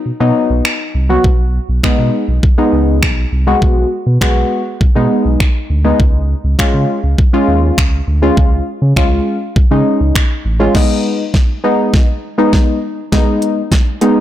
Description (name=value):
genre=dance-pop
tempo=101 BPM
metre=4/4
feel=straight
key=G# dorian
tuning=A4 = 438 Hz
part: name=sub bass with octave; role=bass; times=0.1-10.7 s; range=A1 to C#3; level=-14 LUFS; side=equal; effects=sidechain pumping
part: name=deep mellow chord stab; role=accompaniment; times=0.2-14.2 s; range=F#3 to F#4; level=-14 LUFS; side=left 1 dB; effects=chorus, sidechain pumping
part: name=pop drum kit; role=drums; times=0.7-14.2 s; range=crash cymbal, finger snaps, hi-hat, kick drum, snare drum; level=-12 LUFS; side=equal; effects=soft clipping on snare
room=light reverb, digital ambience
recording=blown-out, overdriven recording, overdrive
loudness=-11 LUFS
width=side -12 dB against mid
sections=0.0-10.7 A section; 10.7-14.2 B section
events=build-up 10.7-14.2; drum fill 10.7-14.2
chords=0.0 B; 1.2 G#m/B; 6.0 C#; 10.7 G#m